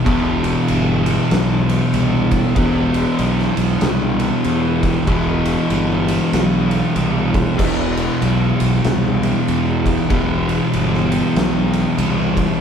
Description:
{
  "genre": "stoner and doom metal",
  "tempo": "96 BPM",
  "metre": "4/4",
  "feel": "swing 61% on 8ths",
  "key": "E minor",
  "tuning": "A4 = 440 Hz",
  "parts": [
    { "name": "fuzz guitar", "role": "riff", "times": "0.0-12.6 s", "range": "E2 to E3", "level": "-17 LUFS", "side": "equal", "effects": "distortion" },
    { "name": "fuzz fingered electric bass", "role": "bass", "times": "0.1-12.5 s", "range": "E1 to E2", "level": "-22 LUFS", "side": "right 1 dB", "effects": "overdrive" },
    { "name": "oversized low-tuned drum kit", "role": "drums", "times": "0.1-12.5 s", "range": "crash cymbal, kick drum, ride cymbal, snare drum", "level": "-22 LUFS", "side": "equal", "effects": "none" }
  ],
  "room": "moderate studio reverb, RT60 0.8 s",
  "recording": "band playing live in one room",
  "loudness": "-15 LUFS",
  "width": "side -7 dB against mid",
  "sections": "0.0-12.6 A section",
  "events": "none",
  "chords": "0.0 E5",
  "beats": "| 0.05 0.68 1.31 1.94 | 2.56 3.19 3.82 4.45 | 5.08 5.70 6.33 6.96 | 7.58 8.21 8.84 9.47 | 10.09 10.72 11.35 11.98 | 12.61"
}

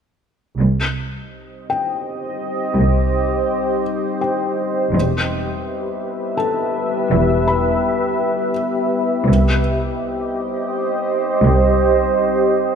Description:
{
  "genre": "cinematic",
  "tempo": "83 BPM",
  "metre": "3/4",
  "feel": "straight",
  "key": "C harmonic minor",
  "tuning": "A4 = 440 Hz",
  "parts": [
    { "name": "deep dark ambient pad", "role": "sustained chords", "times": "1.7-12.8 s", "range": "G4 to E5", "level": "-18 LUFS", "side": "equal", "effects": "chorus, built-in reverb" },
    { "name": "warm symphonic cello section", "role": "bass", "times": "0.6-12.0 s", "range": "C2 to E2", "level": "-20 LUFS", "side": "equal", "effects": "none" },
    { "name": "warm symphonic double bass section", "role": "bass", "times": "0.6-12.0 s", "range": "E1 to C2", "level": "-21 LUFS", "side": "right 1 dB", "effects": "none" },
    { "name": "felt-muted upright piano", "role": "texture", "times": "1.7-12.8 s", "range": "A4 to B5", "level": "-26 LUFS", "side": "left 4 dB", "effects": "none" }
  ],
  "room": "light reverb",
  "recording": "none",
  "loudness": "-16 LUFS",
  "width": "side -7 dB against mid",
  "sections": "0.6-12.8 A section",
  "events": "none",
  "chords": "0.6 Cm; 4.9 Em; 9.3 Cm",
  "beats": "| 0.60 1.33 2.05 | 2.77 3.50 4.22 | 4.94 5.66 6.39 | 7.11 7.83 8.55 | 9.28 10.00 10.72 | 11.45 12.17"
}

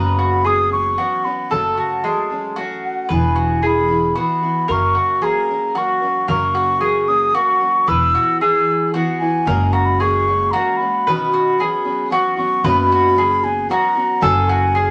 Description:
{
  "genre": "acoustic folk duo or small band",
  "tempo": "113 BPM",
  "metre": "3/4",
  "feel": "straight",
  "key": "unclear",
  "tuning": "A4 = 441 Hz",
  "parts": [
    { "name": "baroque flute", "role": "melody", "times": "0.0-14.9 s", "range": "F#5 to E6", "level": "-20 LUFS", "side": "equal", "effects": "none" },
    { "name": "picked steel-string acoustic guitar", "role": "accompaniment", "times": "0.0-14.9 s", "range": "F#2 to A#4", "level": "-26 LUFS", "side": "equal", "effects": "none" },
    { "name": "mandolin", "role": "arpeggios", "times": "0.0-14.9 s", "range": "G#3 to B4", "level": "-24 LUFS", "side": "equal", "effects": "none" },
    { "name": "upright bass", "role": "bass", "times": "0.0-14.9 s", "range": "E1 to F#1", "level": "-24 LUFS", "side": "equal", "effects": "none" }
  ],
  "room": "moderate studio ambience, RT60 0.4 s",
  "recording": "none",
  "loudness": "-17 LUFS",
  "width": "mono",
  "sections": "0.0-12.7 A section; 12.7-14.9 B section",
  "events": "none",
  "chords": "0.0 F#sus4; 1.5 F#madd9; 3.1 E; 4.7 F#; 7.9 E; 9.5 F#add9; 11.1 Badd9; 12.7 F#sus4; 14.2 F#madd9",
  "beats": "0.45 0.98 | 1.51 2.04 2.57 | 3.10 3.63 4.16 | 4.69 5.22 5.75 | 6.29 6.82 7.35 | 7.88 8.41 8.94 | 9.47 10.01 10.54 | 11.06 11.59 12.12 | 12.65 13.18 13.70 | 14.23 14.76"
}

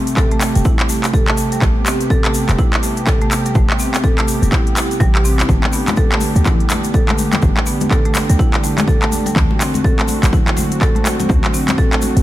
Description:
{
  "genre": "afro house",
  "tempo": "124 BPM",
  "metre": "4/4",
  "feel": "swing 60% on 16ths",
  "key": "A dorian",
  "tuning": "A4 = 440 Hz",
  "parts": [
    { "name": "warm analog pad", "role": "sustained chords", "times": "0.0-12.2 s", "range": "C3 to G4", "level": "-23 LUFS", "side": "right 1 dB", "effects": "lush chorus, sidechain pumping" },
    { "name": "afro-pop drum kit", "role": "drums", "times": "0.1-12.2 s", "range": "handclaps, hi-hat", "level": "-21 LUFS", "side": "equal", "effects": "none" },
    { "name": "tube shaker", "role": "percussion", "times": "0.1-12.2 s", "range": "none", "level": "-29 LUFS", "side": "left 4 dB", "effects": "none" },
    { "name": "marimba with medium hard mallets", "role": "arpeggios", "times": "0.2-12.2 s", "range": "F#3 to A4", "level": "-21 LUFS", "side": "right 1 dB", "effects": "sidechain pumping, digital delay" },
    { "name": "electronic kick drum", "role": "drums", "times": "0.2-11.9 s", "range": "none", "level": "-16 LUFS", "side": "equal", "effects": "none" },
    { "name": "warm 808-style bass", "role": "bass", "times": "0.6-12.2 s", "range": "E1 to D2", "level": "-14 LUFS", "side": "equal", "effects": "sidechain pumping" },
    { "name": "congas", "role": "percussion", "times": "5.5-12.1 s", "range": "none", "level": "-24 LUFS", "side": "left 4 dB", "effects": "none" }
  ],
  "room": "light reverb",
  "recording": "none",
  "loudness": "-13 LUFS",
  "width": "side -14 dB against mid",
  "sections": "0.0-12.2 A section",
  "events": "none",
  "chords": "0.0 Am7; 5.5 G; 9.4 D7",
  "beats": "0.17 0.65 1.14 | 1.62 2.10 2.59 3.07 | 3.56 4.04 4.52 5.01 | 5.49 5.97 6.46 6.94 | 7.43 7.91 8.39 8.88 | 9.36 9.85 10.33 10.81 | 11.30 11.78"
}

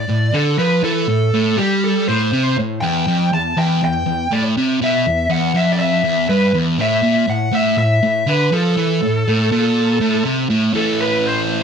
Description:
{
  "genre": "metal",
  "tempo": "121 BPM",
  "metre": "4/4",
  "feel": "straight",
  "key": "unclear",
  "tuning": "A4 = 440 Hz",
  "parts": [
    { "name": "high-gain lead guitar", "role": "melody", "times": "0.0-11.6 s", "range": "G4 to A5", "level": "-19 LUFS", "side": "equal", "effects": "distortion" },
    { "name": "sludgy distorted guitar", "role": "riff", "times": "0.0-11.6 s", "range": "E2 to A3", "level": "-16 LUFS", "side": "equal", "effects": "overdrive" }
  ],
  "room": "moderate studio reverb, RT60 0.6 s",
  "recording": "none",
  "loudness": "-14 LUFS",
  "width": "side -6 dB against mid",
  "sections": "0.0-10.8 A section",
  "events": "none",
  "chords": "0.0 A5; 2.8 Em; 6.8 A5; 10.8 Am",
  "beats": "0.34 | 0.83 1.33 1.83 2.33 | 2.82 3.32 3.82 4.31 | 4.81 5.30 5.80 6.30 | 6.79 7.29 7.78 8.28 | 8.78 9.27 9.77 10.26 | 10.76 11.25"
}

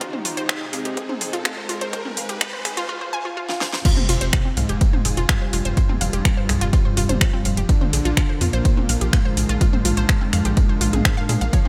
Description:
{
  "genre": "melodic techno",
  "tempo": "125 BPM",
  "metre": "4/4",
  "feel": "straight",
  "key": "F minor",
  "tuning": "A4 = 440 Hz",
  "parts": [
    { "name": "soft octave-layered synth lead", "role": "melody", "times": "0.0-11.7 s", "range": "G3 to F4", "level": "-31 LUFS", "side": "equal", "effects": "chorus, vintage 12-bit sampler grit, sidechain pumping, digital delay" },
    { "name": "lush unison pad", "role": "sustained chords", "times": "0.0-11.7 s", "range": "C3 to Ab5", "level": "-36 LUFS", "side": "equal", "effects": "chorus, phaser, sidechain pumping" },
    { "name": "unison pluck", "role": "arpeggios", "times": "0.0-11.7 s", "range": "C4 to Ab5", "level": "-32 LUFS", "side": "equal", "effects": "sidechain pumping, digital delay" },
    { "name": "deep house drum kit", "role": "drums", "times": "0.0-11.7 s", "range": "crash cymbal, finger snaps, hi-hat, ride cymbal, snare drum, toms", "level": "-27 LUFS", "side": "equal", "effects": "overdrive" },
    { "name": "electronic kick drum", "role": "drums", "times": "0.0-11.6 s", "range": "none", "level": "-21 LUFS", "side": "equal", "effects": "high-pass filter on kick" },
    { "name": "riser, swell and impact", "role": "sound effects", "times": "0.0-5.8 s", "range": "none", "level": "-34 LUFS", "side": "equal", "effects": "none" },
    { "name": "granular cloud pad", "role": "texture", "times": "0.0-11.7 s", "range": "D4 to Ab5", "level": "-40 LUFS", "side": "equal", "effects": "none" },
    { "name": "tight sequencer bass", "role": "bass", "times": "0.3-11.5 s", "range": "F1 to Bb2", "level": "-25 LUFS", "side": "equal", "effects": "sidechain pumping, high-pass filter" },
    { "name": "big bright polysynth", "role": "second line", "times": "3.9-11.7 s", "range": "G2 to F3", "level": "-31 LUFS", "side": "equal", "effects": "lush chorus, sidechain pumping, digital delay" }
  ],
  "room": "light reverb, digital ambience",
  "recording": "bright 1980s-style digital production, high-pass filter",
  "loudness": "-20 LUFS",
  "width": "mono",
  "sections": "0.0-3.9 A section; 3.9-11.7 B section",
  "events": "build-up 0.0-3.9; riser 0.0-2.9; filter sweep on soft synth lead 0.0-3.9; swell 2.9-3.9; drum fill 3.5-3.9; drop 3.9-11.7; impact 3.9-5.8",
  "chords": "0.0 Ab; 3.9 Fm; 7.7 Bb",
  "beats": "| 0.01 0.49 0.97 1.45 | 1.93 2.41 2.89 3.37 | 3.85 4.33 4.81 5.29 | 5.77 6.25 6.73 7.21 | 7.69 8.17 8.65 9.13 | 9.61 10.09 10.57 11.05 | 11.53"
}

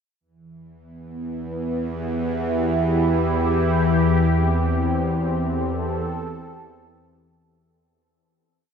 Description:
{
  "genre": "dark ambient drone",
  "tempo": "free time",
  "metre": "none",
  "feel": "none",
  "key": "E minor",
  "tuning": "A4 = 440 Hz",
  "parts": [
    { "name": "sweeping resonant pad", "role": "sustained chords", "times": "0.2-7.5 s", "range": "E2 to A4", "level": "-24 LUFS", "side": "right 1 dB", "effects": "chorus, phaser" },
    { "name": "bowed-like drone", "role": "drone", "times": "1.5-7.6 s", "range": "E2 to E3", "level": "-22 LUFS", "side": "left 1 dB", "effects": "built-in reverb" }
  ],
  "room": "wet huge ambient reverb, RT60 8.0 s",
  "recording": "none",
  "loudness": "-20 LUFS",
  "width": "side -6 dB against mid",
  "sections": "0.2-7.5 A section",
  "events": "fade-in on synth drone 0.2-7.5; fade-in on analog synth pad 0.2-7.5; fade-out 3.8-7.5",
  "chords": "0.2 Em; 3.8 Am7/E",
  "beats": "free time"
}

